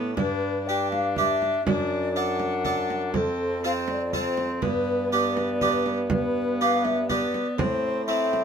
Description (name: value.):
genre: classical, renaissance-style consort dance.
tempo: 122 BPM.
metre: 3/4.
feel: straight.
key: unclear.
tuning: A4 = 438 Hz.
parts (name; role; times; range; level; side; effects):
harpsichord; accompaniment; 0.0-8.4 s; F2 to A4; -29 LUFS; right 3 dB; none.
rich viola; accompaniment; 0.0-8.4 s; B3 to D4; -30 LUFS; equal; none.
warm bassoon; bass; 0.0-8.4 s; F2 to A2; -30 LUFS; right 2 dB; none.
mellow hollow concert flute; melody; 0.2-8.4 s; A4 to G5; -28 LUFS; left 4 dB; none.
frame drum; percussion; 0.2-8.4 s; none; -30 LUFS; right 4 dB; none.
room: light reverb.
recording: minimal, uncompressed stereo recording.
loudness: -22 LUFS.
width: side -7 dB against mid.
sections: 0.2-8.4 A section.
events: none.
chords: 0.2 G; 1.7 D/F#; 3.1 F; 4.6 G; 7.6 Am.